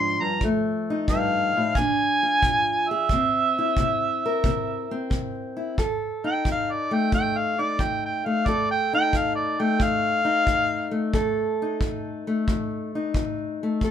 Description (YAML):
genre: acoustic country blues, solo or duo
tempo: 90 BPM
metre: 4/4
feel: swing 68% on 8ths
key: F mixolydian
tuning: A4 = 439 Hz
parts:
  - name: mellow harmonica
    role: melody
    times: 0.0-11.1 s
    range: D5 to C6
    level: -23 LUFS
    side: right 1 dB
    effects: none
  - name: fingerpicked steel-string acoustic guitar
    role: accompaniment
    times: 0.0-13.9 s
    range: F2 to Bb4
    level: -26 LUFS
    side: left 2 dB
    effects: none
  - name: kick drum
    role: drums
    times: 0.4-13.9 s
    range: none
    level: -28 LUFS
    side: equal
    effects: none
room: light reverb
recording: minimal, uncompressed stereo recording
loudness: -21 LUFS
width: side -9 dB against mid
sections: 0.0-5.8 A section; 5.8-13.9 B section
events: harmonica solo 5.8-13.9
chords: 0.4 F7; 1.8 Bb7; 3.1 C7; 5.8 F7